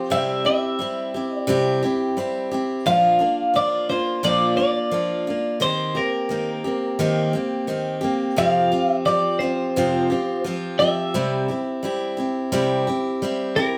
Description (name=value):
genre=rock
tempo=87 BPM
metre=4/4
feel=straight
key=unclear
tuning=A4 = 441 Hz
part: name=twelve-string electric guitar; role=melody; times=0.0-13.8 s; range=Bb4 to F5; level=-24 LUFS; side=equal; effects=none
part: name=picked steel-string acoustic guitar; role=accompaniment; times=0.0-13.8 s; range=F2 to G4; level=-24 LUFS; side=equal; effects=none
room=wet studio reverb, RT60 0.5 s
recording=band playing live in one room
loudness=-22 LUFS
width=mono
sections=0.0-13.8 A section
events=none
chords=0.1 C; 2.9 Bb; 5.6 Eb6; 8.4 Fsus2; 11.1 C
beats=| 0.11 0.80 1.49 2.18 | 2.87 3.56 4.25 4.94 | 5.63 6.32 7.01 7.70 | 8.39 9.08 9.77 10.46 | 11.15 11.84 12.53 13.22